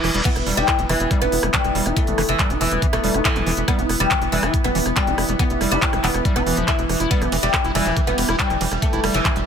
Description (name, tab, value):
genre	psychedelic trance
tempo	140 BPM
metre	4/4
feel	straight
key	E minor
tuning	A4 = 440 Hz
part	oud	melody	0.0-9.3 s	E3 to E4	-23 LUFS	left 2 dB	phaser, sidechain pumping, digital delay
part	pulsing gated texture	sustained chords	0.0-9.5 s	E3 to E4	-28 LUFS	equal	chorus, built-in reverb, sidechain pumping
part	overdriven acid bass	riff	0.0-9.3 s	E3 to E4	-27 LUFS	right 1 dB	auto-pan, sidechain pumping, digital delay
part	tight sequencer bass	bass	0.0-9.4 s	E1 to F1	-25 LUFS	equal	none
part	drum and bass drum kit	drums	0.0-9.4 s	crash cymbal, handclaps, hi-hat, ride cymbal, rim click	-25 LUFS	equal	none
part	warbly tape-like pad	texture	0.0-9.5 s	E4 to E5	-29 LUFS	right 2 dB	chorus, built-in reverb, sidechain pumping
part	electronic kick drum	drums	0.3-9.3 s	none	-22 LUFS	equal	none
room	light reverb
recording	none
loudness	-17 LUFS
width	side -7 dB against mid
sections	0.0-9.5 A section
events	none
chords	0.0 E5